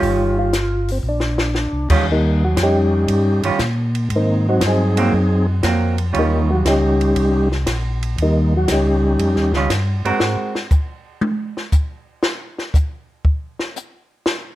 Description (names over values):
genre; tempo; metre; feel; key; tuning
soul jazz organ trio; 118 BPM; 4/4; swing 69% on 8ths; Eb mixolydian; A4 = 442 Hz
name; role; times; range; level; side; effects
percussive tonewheel organ; melody; 0.0-9.5 s; Eb3 to Ab4; -18 LUFS; equal; slow rotary speaker, plate reverb
vintage hollow-body jazz guitar; accompaniment; 0.0-10.6 s; Eb3 to Bb4; -21 LUFS; right 4 dB; none
mellow tonewheel organ; bass; 0.0-10.4 s; G1 to Bb2; -19 LUFS; equal; slow rotary speaker
compact cocktail drum kit; drums; 0.0-14.4 s; crash cymbal, hi-hat, kick drum, ride cymbal, snare drum, toms; -21 LUFS; equal; none
room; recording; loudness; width
light reverb; none; -16 LUFS; side -15 dB against mid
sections
0.0-2.1 A section; 2.1-14.6 B section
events
drum fill 1.0-1.6; tonewheel organ solo 2.1-14.6; drum solo 10.2-14.6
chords
0.0 Eb9; 1.0 Bbadd9; 2.1 Eb9; 4.1 Ab9; 6.1 Eb9; 10.2 Ab9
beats
| 0.02 0.53 1.04 1.55 | 2.06 2.57 3.08 3.59 | 4.11 4.62 5.12 5.63 | 6.14 6.65 7.16 7.67 | 8.18 8.69 9.19 9.70 | 10.21 10.71 11.22 11.73 | 12.23 12.74 13.24 13.75 | 14.25